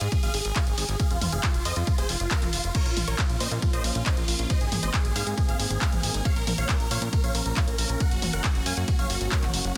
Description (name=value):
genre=uplifting trance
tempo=137 BPM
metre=4/4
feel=straight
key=Bb minor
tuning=A4 = 435 Hz
part: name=big supersaw lead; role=melody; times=0.0-9.7 s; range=F4 to Ab5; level=-34 LUFS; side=equal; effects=phaser, sidechain pumping, tape echo
part: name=fat analog bass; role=bass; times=0.0-9.7 s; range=F1 to Bb2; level=-32 LUFS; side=equal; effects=sidechain pumping
part: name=punchy analog drum machine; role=drums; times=0.0-9.7 s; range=crash cymbal, handclaps, hi-hat, ride cymbal, toms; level=-32 LUFS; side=equal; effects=sidechain pumping on hats, sidechain pumping on toms, sidechain pumping on cymbals
part: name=electronic kick drum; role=drums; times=0.1-9.4 s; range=none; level=-28 LUFS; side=equal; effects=none
part: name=lush unison pad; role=sustained chords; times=3.1-9.8 s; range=F3 to Db4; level=-39 LUFS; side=equal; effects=chorus, vintage 12-bit sampler grit, sidechain pumping
room=digital ambience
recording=dense, heavily limited modern master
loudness=-26 LUFS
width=mono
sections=0.0-9.8 A section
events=none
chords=0.0 N.C.; 1.0 Fm; 2.7 Bbm; 4.5 Abadd9; 6.3 Bbm; 8.0 Gb